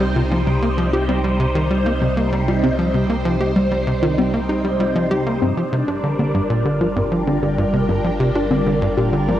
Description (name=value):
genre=ambient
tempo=97 BPM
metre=4/4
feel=straight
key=C minor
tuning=A4 = 440 Hz
part: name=phased string machine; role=sustained chords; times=0.0-9.4 s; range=C3 to G5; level=-21 LUFS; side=equal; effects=ensemble chorus, phaser
part: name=warbly dusty pluck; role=arpeggios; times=0.0-9.4 s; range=G3 to G4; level=-25 LUFS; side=left 2 dB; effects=chorus, auto-pan, tape echo
part: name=tight sequencer bass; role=riff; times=0.0-9.4 s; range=G2 to G4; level=-20 LUFS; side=equal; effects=tape echo
part: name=warm sub bass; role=bass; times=0.0-9.4 s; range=G1 to C2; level=-26 LUFS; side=equal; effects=transformer saturation
part: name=bubbling stepped-filter texture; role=texture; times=0.0-9.4 s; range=C5 to D5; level=-34 LUFS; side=left 1 dB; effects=chorus, built-in reverb
room=moderate plate reverb, RT60 2.5 s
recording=worn, warbling old tape, cassette tape, warbly pitch drift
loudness=-16 LUFS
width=side -12 dB against mid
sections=0.0-9.4 A section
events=filter sweep on synth arpeggio sound 0.0-9.4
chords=0.0 Cm; 5.4 Gm7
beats=| 0.47 1.09 1.71 2.33 | 2.94 3.56 4.18 4.80 | 5.42 6.04 6.66 7.27 | 7.89 8.51 9.13